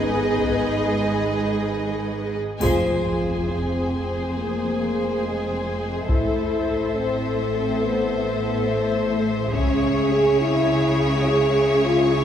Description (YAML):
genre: cinematic, epic orchestral film score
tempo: 69 BPM (dotted quarters)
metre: 6/8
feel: straight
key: unclear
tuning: A4 = 439 Hz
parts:
  - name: warm symphonic violin section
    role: melody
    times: 0.0-12.2 s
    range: Ab4 to Ab5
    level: -34 LUFS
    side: left 5 dB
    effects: none
  - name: clear studio violin section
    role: second line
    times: 0.0-12.2 s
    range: Cb5 to Eb5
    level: -28 LUFS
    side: left 2 dB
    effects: none
  - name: rich studio viola section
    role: accompaniment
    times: 0.0-12.2 s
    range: Ab4 to A4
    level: -27 LUFS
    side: equal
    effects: none
  - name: dark trombone section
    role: sustained chords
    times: 0.0-2.3 s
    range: Eb3 to Ab3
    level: -30 LUFS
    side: right 5 dB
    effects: none
  - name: mellow French horn section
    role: sustained chords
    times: 0.0-12.2 s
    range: Ab3 to Ab4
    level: -24 LUFS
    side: left 1 dB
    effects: none
  - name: rich symphonic string section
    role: sustained chords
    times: 0.0-2.6 s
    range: Ab3 to Eb5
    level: -30 LUFS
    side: right 1 dB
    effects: none
  - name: rich studio double bass section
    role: bass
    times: 0.0-12.2 s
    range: F1 to Db2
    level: -29 LUFS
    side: right 1 dB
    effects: none
  - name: rich symphonic cello section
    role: bass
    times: 0.0-12.2 s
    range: F2 to Db3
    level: -29 LUFS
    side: right 2 dB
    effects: none
  - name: taiko ensemble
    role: drums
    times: 0.4-10.6 s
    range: none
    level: -28 LUFS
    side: left 1 dB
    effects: none
  - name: triangle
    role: percussion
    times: 2.6-3.7 s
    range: none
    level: -40 LUFS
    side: left 2 dB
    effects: none
  - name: sub drop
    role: sound effects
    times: 2.6-4.3 s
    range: none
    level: -36 LUFS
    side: left 1 dB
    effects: none
room: wet church reverb, RT60 2.7 s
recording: recorded in a church or concert hall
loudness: -19 LUFS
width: side -9 dB against mid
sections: 0.0-2.6 A section; 2.6-12.2 B section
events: band accent 2.6-3.2; impact 2.6-4.4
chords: 0.0 Abm; 2.6 Fm; 6.1 Am; 9.5 Dbm